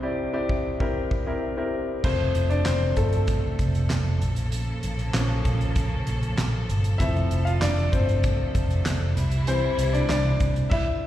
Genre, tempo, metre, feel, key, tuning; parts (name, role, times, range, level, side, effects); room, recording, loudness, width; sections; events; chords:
piano-driven pop; 97 BPM; 4/4; straight; F major; A4 = 441 Hz
clear concert grand piano; accompaniment; 0.0-11.1 s; C2 to F5; -27 LUFS; left 2 dB; slapback echo
damped 70s drum kit; drums; 0.5-10.9 s; crash cymbal, handclaps, hi-hat, kick drum, snare drum; -27 LUFS; equal
clear studio string section; sustained chords; 2.0-10.7 s; C3 to A4; -33 LUFS; equal
vintage muted fingered electric bass; bass; 2.0-10.7 s; F1 to C2; -24 LUFS; equal
light reverb; live gig heard through the venue's PA, recital hall reverb; -22 LUFS; side -13 dB against mid
0.0-2.0 A section; 2.0-11.1 B section
grand piano solo 2.0-11.1
0.0 C; 2.0 F; 4.2 Bbm; 7.0 F; 9.2 C